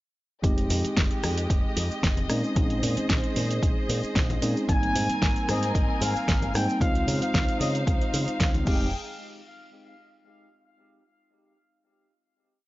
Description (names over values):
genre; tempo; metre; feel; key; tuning
nu-disco, nu disco; 113 BPM; 4/4; straight; F minor; A4 = 440 Hz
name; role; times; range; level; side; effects
mellow tine electric piano; accompaniment; 0.4-8.9 s; G3 to G4; -30 LUFS; equal; none
warm studio string section; sustained chords; 0.4-8.9 s; Ab3 to Ab5; -33 LUFS; equal; sidechain pumping
fingered electric bass with an envelope filter; bass; 0.4-8.9 s; F1 to Db3; -29 LUFS; equal; none
electronic kick drum; drums; 0.4-8.8 s; none; -25 LUFS; equal; small room ambience
pop drum kit; drums; 0.4-8.8 s; cabasa, crash cymbal, hi-hat, rim click, snare drum; -30 LUFS; equal; small room ambience
congas and cabasa; percussion; 0.4-8.9 s; none; -37 LUFS; left 2 dB; none
mellow trumpet section; melody; 4.7-8.9 s; Eb5 to Ab5; -32 LUFS; left 1 dB; tape echo
room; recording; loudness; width
digital ambience; dry, gritty hardware recording, nothing above 7.5 kHz; -23 LUFS; side -18 dB against mid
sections
0.4-8.9 drop; 8.9-11.1 final hit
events
drop 0.4-8.9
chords
0.4 Fm9; 2.3 Bbm11; 4.7 Abmaj9; 6.8 Dbmaj9; 8.7 Fm9; 8.9 N.C.